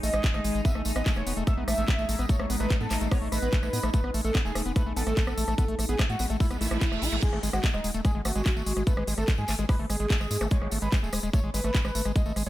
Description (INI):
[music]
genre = psychedelic trance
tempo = 146 BPM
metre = 4/4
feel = straight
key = G# phrygian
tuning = A4 = 441 Hz
[part]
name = overdriven synth lead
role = melody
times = 0.0-12.5 s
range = D#4 to E5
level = -34 LUFS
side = equal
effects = distortion, phaser, cassette tape, sidechain pumping, dub echo
[part]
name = vowel-sweep wobble bass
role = second line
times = 0.0-11.7 s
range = D#3 to B3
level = -48 LUFS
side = left 4 dB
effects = none
[part]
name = overtone-sweeping drone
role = sustained chords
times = 0.0-7.3 s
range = G#3 to D#4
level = -37 LUFS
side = equal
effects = chorus, built-in reverb, sidechain pumping
[part]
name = overdriven acid bass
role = riff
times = 0.0-12.5 s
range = G#3 to E4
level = -33 LUFS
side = left 1 dB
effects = auto-pan, sidechain pumping, tape echo
[part]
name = round analog bass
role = bass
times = 0.0-12.5 s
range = D#1 to A2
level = -31 LUFS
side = equal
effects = none
[part]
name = drum and bass drum kit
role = drums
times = 0.0-12.5 s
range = crash cymbal, handclaps, hi-hat, rim click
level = -35 LUFS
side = equal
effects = studio reverb
[part]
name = tambourine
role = percussion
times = 0.0-12.5 s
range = none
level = -40 LUFS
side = right 2 dB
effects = none
[part]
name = electronic kick drum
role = drums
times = 0.2-12.2 s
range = none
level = -25 LUFS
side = equal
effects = studio reverb
[part]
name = reverse cymbal and zap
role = sound effects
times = 6.6-7.2, 10.4-10.5 s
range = none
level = -37 LUFS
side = right 4 dB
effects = none
[sound]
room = little or no reverb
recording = none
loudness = -24 LUFS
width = side -15 dB against mid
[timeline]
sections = 0.0-12.5 A section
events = reverse cymbal 6.6-7.2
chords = 0.0 G#5; 0.7 A5; 7.2 G#5